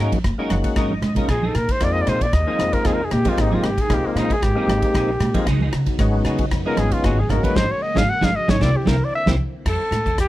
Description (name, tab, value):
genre	electric jazz fusion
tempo	115 BPM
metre	4/4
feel	swing 53% on 16ths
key	unclear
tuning	A4 = 440 Hz
part	percussive tonewheel organ	accompaniment	0.0-9.4 s	Ab3 to Gb5	-23 LUFS	left 2 dB	slow rotary speaker, overdrive, chorus vibrato
part	clean electric guitar	stabs	0.0-10.2 s	F3 to Bb4	-31 LUFS	right 3 dB	ensemble chorus
part	upright bass	bass	0.0-10.3 s	Gb1 to Db3	-22 LUFS	equal	none
part	modern studio drum kit	drums	0.1-10.3 s	crash cymbal, hi-hat, kick drum, ride cymbal, rim click, snare drum	-24 LUFS	equal	none
part	congas	percussion	0.1-10.0 s	none	-25 LUFS	right 4 dB	none
part	breathy trumpet	melody	1.3-10.3 s	Bb3 to Gb5	-23 LUFS	equal	slapback echo
part	string machine, full ensemble	sustained chords	1.3-9.6 s	C3 to Gb4	-31 LUFS	equal	phaser, ensemble chorus
room	little or no reverb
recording	none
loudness	-17 LUFS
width	side -15 dB against mid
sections	0.0-9.7 A section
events	trumpet solo 0.0-9.7; tonewheel organ fill 0.2-1.3; drum fill 0.9-1.3, 9.4; band accent 7.6-9.7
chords	0.0 Ab9sus4; 1.3 Bb9sus4; 5.5 Db9sus4; 7.3 Ab9sus4; 8.6 C9; 9.7 Fmaj9